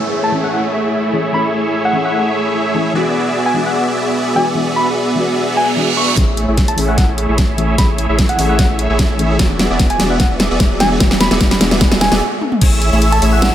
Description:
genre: future bass.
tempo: 149 BPM.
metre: 4/4.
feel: half-time.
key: A major.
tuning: A4 = 439 Hz.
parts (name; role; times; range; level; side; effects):
soft round pluck; accompaniment; 0.0-12.2 s; E3 to G#4; -23 LUFS; left 3 dB; lush chorus, sidechain pumping, tape echo.
dense compressed supersaw; riff; 0.0-13.5 s; A3 to E5; -17 LUFS; equal; sidechain pumping, low-pass filter.
downlifter, reverse cymbal and riser; sound effects; 0.0-3.0, 5.5-12.2 s; none; -25 LUFS; right 2 dB; none.
soft struck synth lead; melody; 0.2-13.5 s; F#5 to C#6; -20 LUFS; equal; chorus, vintage 12-bit sampler grit, sidechain pumping, tape echo.
saturated sub bass; bass; 6.2-13.5 s; E1 to A1; -19 LUFS; equal; sidechain pumping.
dubstep drum kit; drums; 6.2-13.5 s; crash cymbal, hi-hat, snare drum, toms; -16 LUFS; equal; none.
electronic kick drum; drums; 6.2-12.7 s; none; -14 LUFS; equal; none.
airy dreamy lead; arpeggios; 12.6-13.5 s; E6; -23 LUFS; equal; chorus, sidechain pumping, tape echo.
room: moderate lush hall reverb, RT60 1.8 s, digital ambience.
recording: none.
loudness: -12 LUFS.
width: side -11 dB against mid.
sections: 0.0-6.2 A section; 6.2-12.6 B section.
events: filter sweep on supersaw synth 0.0-6.2, 6.2-12.6; reverse cymbal 5.5-6.2; build-up 6.2-12.6; drum fill 6.2-12.2, 12.4; stop 12.2-12.6.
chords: 0.0 Amaj7; 3.0 E9; 6.2 Amaj7; 9.4 E9; 12.6 Amaj7.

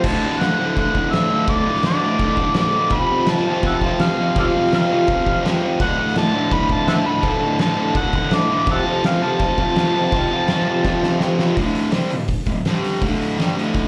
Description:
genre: garage rock duo or trio.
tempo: 166 BPM.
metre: 4/4.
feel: straight.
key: unclear.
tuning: A4 = 437 Hz.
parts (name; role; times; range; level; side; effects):
overdriven harmonica; melody; 0.0-11.2 s; A4 to B5; -24 LUFS; equal; plate reverb, slapback echo.
fuzz guitar; riff; 0.0-13.9 s; D2 to C4; -22 LUFS; equal; distortion, slapback echo.
oversized low-tuned drum kit; drums; 0.0-13.8 s; crash cymbal, hi-hat, kick drum, snare drum; -24 LUFS; equal; none.
room: moderate club reverb, RT60 0.7 s.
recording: live gig heard through the venue's PA, club reverb.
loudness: -19 LUFS.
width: mono.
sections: 0.0-11.6 A section; 11.6-13.9 B section.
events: drum fill 10.8-11.6.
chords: 0.0 D; 2.9 F; 5.8 D; 8.7 F; 11.6 D5; 12.7 G5; 13.0 D5.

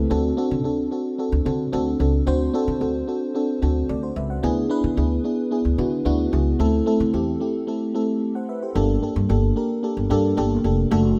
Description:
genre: 1980s-style pop.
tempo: 111 BPM.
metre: 4/4.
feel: straight.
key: unclear.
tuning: A4 = 439 Hz.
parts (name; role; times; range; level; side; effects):
FM electric piano with soft pad layer; accompaniment; 0.0-11.2 s; A3 to F#5; -24 LUFS; equal; chorus.
upright bass; bass; 0.0-11.1 s; F1 to D3; -25 LUFS; equal; none.
room: moderate lush hall reverb, RT60 2.2 s.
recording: none.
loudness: -22 LUFS.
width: mono.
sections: 0.0-8.8 A section; 8.8-11.2 B section.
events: break 7.7-8.8.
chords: 0.1 D7; 4.4 E7/D; 6.6 Am/D; 8.8 Gmadd9.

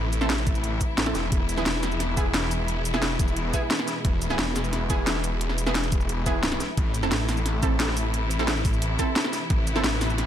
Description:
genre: dark technical drum and bass.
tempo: 176 BPM.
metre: 4/4.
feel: straight.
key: A harmonic minor.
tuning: A4 = 440 Hz.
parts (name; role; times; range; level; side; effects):
clear symphonic string section; sustained chords; 0.0-10.3 s; B2 to B4; -31 LUFS; left 1 dB; vintage 12-bit sampler grit, sidechain pumping.
orchestra-hit-like synth stab; stabs; 0.0-9.8 s; B3 to A4; -32 LUFS; right 3 dB; built-in reverb, tape echo.
snarling distorted saw bass; bass; 0.0-10.3 s; E1 to A1; -27 LUFS; equal; distortion.
drum and bass drum kit; drums; 0.1-10.3 s; hi-hat, shaker, snare drum; -27 LUFS; equal; overdrive.
electronic kick drum; drums; 0.5-9.6 s; none; -25 LUFS; equal; overdrive.
room: digital ambience.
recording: none.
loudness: -22 LUFS.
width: side -10 dB against mid.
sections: 0.0-10.3 A section.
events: none.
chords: 0.0 Am; 1.3 E; 6.8 Am.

